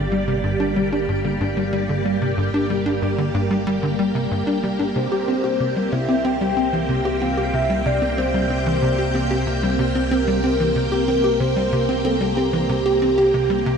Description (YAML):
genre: ambient, sequencer-driven space music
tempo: 93 BPM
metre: 4/4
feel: straight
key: unclear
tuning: A4 = 440 Hz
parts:
  - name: string machine, full ensemble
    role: sustained chords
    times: 0.0-13.8 s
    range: G3 to G5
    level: -24 LUFS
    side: right 1 dB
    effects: phaser, ensemble chorus, shimmer reverb
  - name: tight sequencer bass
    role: riff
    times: 0.0-13.8 s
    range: G2 to G4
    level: -22 LUFS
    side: equal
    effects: lush chorus, shimmer reverb, ping-pong delay
  - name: analog drone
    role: bass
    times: 0.0-13.8 s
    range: G1 to C2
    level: -28 LUFS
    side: equal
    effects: chorus
  - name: soft octave-layered synth lead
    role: melody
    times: 5.0-13.8 s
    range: G4 to G5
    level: -22 LUFS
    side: equal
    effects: chorus, phaser, shimmer reverb, ping-pong delay
room: moderate huge ambient reverb, RT60 8.6 s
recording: none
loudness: -18 LUFS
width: side -6 dB against mid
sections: 0.0-13.8 A section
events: none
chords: 0.0 Gm; 5.0 C7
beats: 0.44 1.08 1.73 | 2.37 3.02 3.66 4.31 | 4.95 5.60 6.24 6.89 | 7.53 8.18 8.82 9.47 | 10.12 10.76 11.40 12.05 | 12.70 13.34